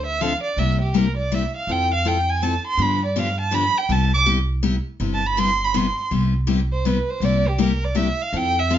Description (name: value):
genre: acoustic string swing (jazz manouche)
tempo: 162 BPM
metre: 3/4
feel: swing 62% on 8ths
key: C major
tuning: A4 = 435 Hz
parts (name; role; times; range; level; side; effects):
- warm violin; melody; 0.0-8.8 s; G4 to D6; -22 LUFS; right 3 dB; slapback echo
- upright bass; bass; 0.0-8.8 s; G1 to G2; -23 LUFS; right 1 dB; none
- picked steel-string acoustic guitar; accompaniment; 0.2-8.8 s; C3 to A4; -23 LUFS; left 6 dB; none
room: moderate studio reverb, RT60 0.5 s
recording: nothing above 7.5 kHz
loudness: -18 LUFS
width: side -10 dB against mid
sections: 0.0-6.1 A section; 6.1-8.8 A section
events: violin solo 0.0-6.1, 6.1-8.8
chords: 0.0 Dm7; 0.6 C7; 1.7 Fmaj7; 2.8 G7; 3.9 Cmaj7; 7.2 C7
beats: 0.20 | 0.57 0.94 1.31 | 1.68 2.05 2.42 | 2.79 3.16 3.53 | 3.90 4.27 4.64 | 5.01 5.38 5.75 | 6.12 6.49 6.86 | 7.23 7.60 7.97 | 8.34 8.71